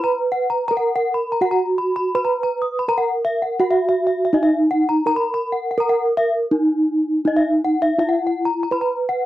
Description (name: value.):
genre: gamelan.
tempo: 82 BPM.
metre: 4/4.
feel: straight.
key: unclear.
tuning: A4 = 440 Hz.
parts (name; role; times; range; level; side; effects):
gamelan-type bronze metallophone; melody; 0.0-9.3 s; Eb4 to Cb5; -19 LUFS; right 1 dB; none.
gamelan-type bronze metallophone; arpeggios; 0.0-9.2 s; Eb5 to Eb6; -22 LUFS; left 2 dB; none.
room: light reverb.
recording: dry, close 1970s-style studio recording.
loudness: -17 LUFS.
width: side -14 dB against mid.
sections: 0.0-9.3 A section.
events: none.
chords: none.